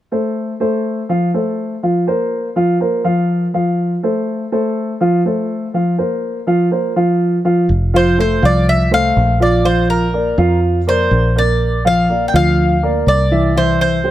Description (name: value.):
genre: latin, Cuban son and guajira.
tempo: 123 BPM.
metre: 4/4.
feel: straight.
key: F major.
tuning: A4 = 440 Hz.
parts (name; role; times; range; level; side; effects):
dark baby grand piano; arpeggios; 0.1-14.1 s; E3 to F5; -15 LUFS; equal; none.
fingered electric bass; bass; 7.7-14.1 s; F1 to F2; -16 LUFS; equal; none.
Cuban tres; melody; 8.0-14.1 s; Bb4 to G5; -17 LUFS; equal; none.
room: little or no reverb.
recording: close, detailed microphones.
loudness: -13 LUFS.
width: side -13 dB against mid.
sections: 0.0-7.7 A section; 7.7-14.1 B section.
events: none.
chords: 0.0 F; 1.8 Bbsus2; 3.8 F; 5.7 Bbsus2; 7.7 F; 9.6 Bb; 11.6 C9sus4; 13.6 C.